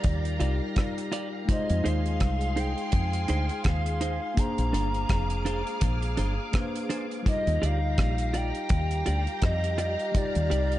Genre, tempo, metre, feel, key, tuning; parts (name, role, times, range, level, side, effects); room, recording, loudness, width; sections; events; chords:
lovers rock reggae; 83 BPM; 4/4; swing 57% on 16ths; A4 = 440 Hz
reedy FM lead; melody; 0.0-10.8 s; D5 to Bb5; -33 LUFS; equal; chorus, tape echo
string machine, full ensemble; second line; 0.0-10.8 s; G4 to D6; -36 LUFS; equal; ensemble chorus, dub echo
mellow tine electric piano; accompaniment; 0.0-10.8 s; G3 to Eb5; -34 LUFS; left 3 dB; dub echo
deep dub fingered electric bass; bass; 0.0-10.8 s; F1 to F2; -27 LUFS; equal
deep reggae drum kit; drums; 0.0-10.8 s; hi-hat, kick drum, rim click; -28 LUFS; equal
clean electric guitar; stabs; 0.4-10.7 s; D4 to D5; -36 LUFS; right 3 dB; dub echo
light reverb, small room ambience; dark, warm production, nothing above 10.3 kHz; -25 LUFS; side -14 dB against mid
0.0-10.8 A section
0.0 Ebmaj9; 1.5 Fm7; 4.4 Bb9; 7.3 Ebmaj9